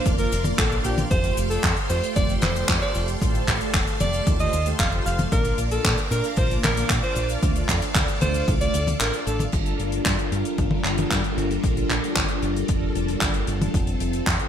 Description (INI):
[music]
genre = italo disco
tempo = 114 BPM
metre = 4/4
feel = straight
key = G minor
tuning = A4 = 436 Hz
[part]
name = bright alto saxophone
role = melody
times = 0.0-9.4 s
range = G4 to F5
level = -28 LUFS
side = equal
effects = ping-pong delay
[part]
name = string machine, full ensemble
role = sustained chords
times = 0.0-14.5 s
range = G3 to D6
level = -29 LUFS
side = left 1 dB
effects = ensemble chorus
[part]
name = mellow synth brass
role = stabs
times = 0.0-9.5 s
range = A3 to F5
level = -31 LUFS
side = right 4 dB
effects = chorus
[part]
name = fingered electric bass with an envelope filter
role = bass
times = 0.1-14.4 s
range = F1 to Bb2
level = -27 LUFS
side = equal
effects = tube saturation
[part]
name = damped 70s drum kit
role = drums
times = 0.1-14.5 s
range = cabasa, crash cymbal, handclaps, hi-hat, toms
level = -26 LUFS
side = equal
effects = small room reverb, gated reverb
[part]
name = electronic kick drum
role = drums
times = 0.1-14.4 s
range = none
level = -25 LUFS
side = equal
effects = small room reverb
[sound]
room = light reverb, small room ambience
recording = bright 1980s-style digital production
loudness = -20 LUFS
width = side -9 dB against mid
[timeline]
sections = 0.0-9.5 A section; 9.5-14.5 B section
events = break 9.0-9.5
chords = 0.0 Bb; 1.1 Fadd9; 5.3 Bb; 7.4 Dm; 9.5 Gm7; 13.7 F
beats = 0.06 0.58 | 1.11 1.64 2.16 2.69 | 3.21 3.74 4.27 4.79 | 5.32 5.85 6.37 6.90 | 7.43 7.95 8.48 9.01 | 9.53 10.06 10.58 11.11 | 11.64 12.16 12.69 13.21 | 13.74 14.27